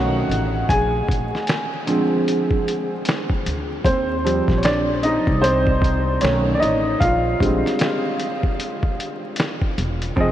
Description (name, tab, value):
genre	lo-fi hip hop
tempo	76 BPM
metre	4/4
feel	swing 61% on 16ths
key	unclear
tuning	A4 = 440 Hz
part	clear upright piano	accompaniment	0.0-10.3 s	D3 to Ab5	-20 LUFS	equal	cassette tape, low-pass filter
part	upright bass	bass	0.0-10.3 s	E1 to Eb2	-24 LUFS	equal	none
part	lo-fi sampler-style drum kit	drums	0.3-10.3 s	finger snaps, hi-hat, kick drum, snare drum	-24 LUFS	equal	none
room	wet huge ambient reverb, RT60 8.1 s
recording	dreamy mix soaked in reverb, vinyl crackle, nothing above 10.7 kHz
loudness	-18 LUFS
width	side -12 dB against mid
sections	0.0-10.2 A section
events	upright piano solo 0.0-10.2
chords	0.0 B9; 0.7 Bb9; 3.9 Eb69; 6.2 B9; 7.0 Bb13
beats	| 0.69 1.48 2.27 3.06 | 3.85 4.64 5.43 6.22 | 7.01 7.80 8.59 9.38 | 10.17